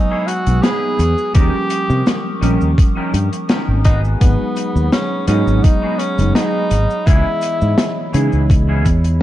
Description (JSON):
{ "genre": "vaporwave", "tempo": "84 BPM", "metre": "4/4", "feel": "swing 54% on 16ths", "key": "unclear", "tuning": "A4 = 438 Hz", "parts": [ { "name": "breathy tenor saxophone", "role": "melody", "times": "0.0-8.1 s", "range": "B3 to G#4", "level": "-22 LUFS", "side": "equal", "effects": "tape echo" }, { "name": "mellow FM electric piano", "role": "accompaniment", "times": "0.0-9.2 s", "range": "E3 to D#5", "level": "-22 LUFS", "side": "right 1 dB", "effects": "phaser, wide subtle chorus, tape echo" }, { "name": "warbly tape-like pad", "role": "sustained chords", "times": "0.0-9.2 s", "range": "G#4 to E6", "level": "-30 LUFS", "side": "equal", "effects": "chorus, built-in reverb, vintage 12-bit sampler grit" }, { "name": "clean electric guitar", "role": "riff", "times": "0.1-9.1 s", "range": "B3 to C#5", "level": "-28 LUFS", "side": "left 1 dB", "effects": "analog chorus, tape echo" }, { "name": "open jazz drum kit", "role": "drums", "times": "0.3-9.2 s", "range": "cabasa, hi-hat, snare drum", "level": "-20 LUFS", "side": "left 1 dB", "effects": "none" }, { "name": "mellow fretless electric bass", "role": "bass", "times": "0.5-9.2 s", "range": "F#1 to C#3", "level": "-15 LUFS", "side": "equal", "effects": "none" }, { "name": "electronic kick drum", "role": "drums", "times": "1.4-9.0 s", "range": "none", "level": "-13 LUFS", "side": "equal", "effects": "overdrive" } ], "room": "light reverb, small room reverb", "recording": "dark, warm production, cassette tape", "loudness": "-13 LUFS", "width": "side -14 dB against mid", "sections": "0.0-9.2 A section", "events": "clean electric guitar fill 8.9-9.2", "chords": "0.0 Emaj7; 1.4 D#7; 3.9 G#m7; 7.1 C#m7" }